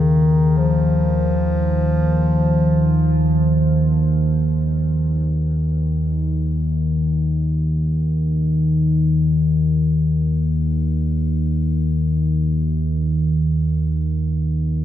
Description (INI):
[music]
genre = dark ambient drone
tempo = free time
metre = none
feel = none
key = unclear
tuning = A4 = 441 Hz
[part]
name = mellow bass clarinet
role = melody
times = 0.0-4.3 s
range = Eb3 to F3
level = -21 LUFS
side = left 1 dB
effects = ping-pong delay
[part]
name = deep rumbling drone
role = drone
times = 0.0-14.8 s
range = Eb2 to Eb3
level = -17 LUFS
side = equal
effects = built-in reverb
[sound]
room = wet huge ambient reverb, RT60 7.3 s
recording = dark, warm production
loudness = -16 LUFS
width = side -11 dB against mid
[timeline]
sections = 0.0-14.8 A section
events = none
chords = none